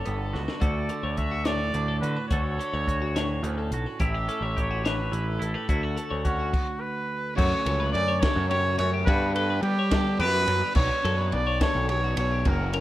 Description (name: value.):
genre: math rock and midwest emo.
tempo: 71 BPM (dotted quarters).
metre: 6/8.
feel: straight.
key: D major.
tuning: A4 = 440 Hz.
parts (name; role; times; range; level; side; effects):
clear trumpet; melody; 0.0-12.7 s; F#4 to E5; -28 LUFS; right 1 dB; slapback echo.
twangy electric guitar; accompaniment; 0.0-8.2 s; D2 to A4; -34 LUFS; right 3 dB; wide subtle chorus.
twelve-string electric guitar; arpeggios; 0.0-12.8 s; F#4 to C#5; -34 LUFS; left 6 dB; none.
overdriven picked electric bass; bass; 0.1-12.8 s; F#1 to G3; -27 LUFS; equal; none.
compact cocktail drum kit; drums; 0.1-12.8 s; crash cymbal, hi-hat, kick drum, ride cymbal, snare drum; -28 LUFS; equal; none.
overdriven electric guitar; riff; 7.4-12.8 s; B2 to D4; -34 LUFS; equal; none.
room: light reverb, small room ambience.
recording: rough home demo mix.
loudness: -23 LUFS.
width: side -14 dB against mid.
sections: 0.0-7.4 A section; 7.4-12.8 B section.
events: drum fill 0.3; stop 6.5-7.4.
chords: 0.0 Gmaj9#11; 0.6 Dmaj7; 4.0 A7; 5.7 Dmaj7; 7.4 F#m; 9.1 Gmaj7; 10.8 Bm9.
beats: | 0.62 1.47 | 2.31 3.16 | 4.00 4.85 | 5.69 6.54 | 7.38 8.23 | 9.07 9.92 | 10.76 11.61 | 12.45.